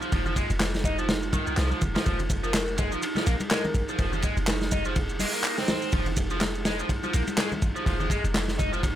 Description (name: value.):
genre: breakbeat, breaks.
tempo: 124 BPM.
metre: 4/4.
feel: swing 57% on 16ths.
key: F minor.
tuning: A4 = 440 Hz.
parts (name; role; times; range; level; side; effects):
warbly tape-like pad; sustained chords; 0.0-9.0 s; Eb4 to Ab4; -36 LUFS; right 5 dB; chorus, built-in reverb, sidechain pumping.
biting overdriven guitar; riff; 0.0-8.8 s; Eb3 to Eb4; -31 LUFS; equal; vintage 12-bit sampler grit, low-pass filter, digital delay.
electronic shaker and handclaps; drums; 0.0-8.9 s; none; -33 LUFS; equal; none.
warm 808-style bass; bass; 0.1-9.0 s; F1 to C2; -29 LUFS; equal; none.
crunchy breakbeat drum kit; drums; 0.1-9.0 s; hi-hat, kick drum, ride cymbal, snare drum; -27 LUFS; equal; none.
congas; percussion; 0.3-8.7 s; none; -37 LUFS; left 1 dB; none.
vibraphone with soft mallets; melody; 2.4-3.7 s; Bb4; -34 LUFS; left 2 dB; small speaker sound, digital delay.
room: little or no reverb.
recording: none.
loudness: -24 LUFS.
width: side -12 dB against mid.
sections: 0.0-9.0 A section.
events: none.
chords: 0.0 Fm7.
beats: | 0.12 0.61 1.09 1.57 | 2.06 2.54 3.03 3.51 | 3.99 4.48 4.96 5.45 | 5.93 6.41 6.90 7.38 | 7.87 8.35 8.83.